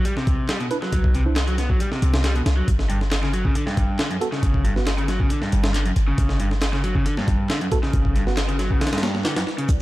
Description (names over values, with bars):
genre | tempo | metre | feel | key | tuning
breakbeat, breaks | 137 BPM | 4/4 | straight | unclear | A4 = 440 Hz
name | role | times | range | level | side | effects
overdriven electric guitar | riff | 0.0-9.7 s | F#2 to B3 | -26 LUFS | equal | vintage 12-bit sampler grit, ping-pong delay
breakbeat sampler-style drum kit | drums | 0.1-9.8 s | hi-hat, kick drum, snare drum | -23 LUFS | equal | none
warm 808-style bass | bass | 0.3-9.8 s | G1 to C2 | -22 LUFS | equal | tube saturation
electronic handclaps and shaker | drums | 0.5-9.8 s | none | -35 LUFS | equal | none
tine electric piano | stabs | 0.7-1.3, 4.2-4.8, 7.7-8.4 s | B3 to C5 | -30 LUFS | right 3 dB | phaser, ping-pong delay
phased analog pad | sustained chords | 9.7-9.8 s | B3 to D5 | -37 LUFS | right 8 dB | phaser, chorus, vintage 12-bit sampler grit, sidechain pumping
room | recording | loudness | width
little or no reverb | dark, warm production | -19 LUFS | side -17 dB against mid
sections
0.0-9.7 A section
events
kick drops out 8.8-9.7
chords
0.0 C5; 2.7 Gmaj7(no3)